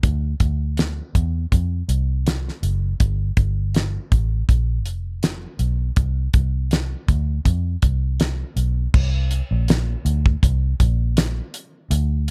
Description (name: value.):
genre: indie pop, bedroom pop.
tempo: 81 BPM.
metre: 4/4.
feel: swing 55% on 16ths.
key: unclear.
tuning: A4 = 440 Hz.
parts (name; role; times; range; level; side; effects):
vintage muted fingered electric bass; bass; 0.0-12.3 s; F1 to F2; -23 LUFS; equal; none.
damped 70s drum kit; drums; 0.0-12.3 s; crash cymbal, hi-hat, kick drum, snare drum; -21 LUFS; equal; none.
room: little or no reverb.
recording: none.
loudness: -21 LUFS.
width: mono.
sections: 0.0-8.9 A section; 8.9-12.3 B section.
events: none.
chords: none.